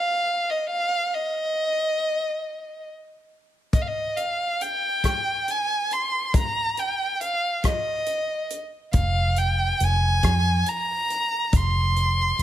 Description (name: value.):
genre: acoustic folk-pop ballad.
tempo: 46 BPM (dotted quarters).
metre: 6/8.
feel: straight.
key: unclear.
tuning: A4 = 442 Hz.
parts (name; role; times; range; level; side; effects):
rich violin; melody; 0.0-12.4 s; Eb5 to C6; -24 LUFS; right 1 dB; none.
natural country drum kit; drums; 3.7-12.4 s; hi-hat, kick drum, rim click; -24 LUFS; left 1 dB; none.
vintage muted fingered electric bass; bass; 8.9-12.4 s; F1 to F2; -22 LUFS; equal; none.
room: light reverb.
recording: close, detailed microphones.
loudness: -22 LUFS.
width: side -12 dB against mid.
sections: 0.0-3.7 A section; 3.7-12.4 B section.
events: none.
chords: 0.0 N.C.; 8.9 Bbsus2/F.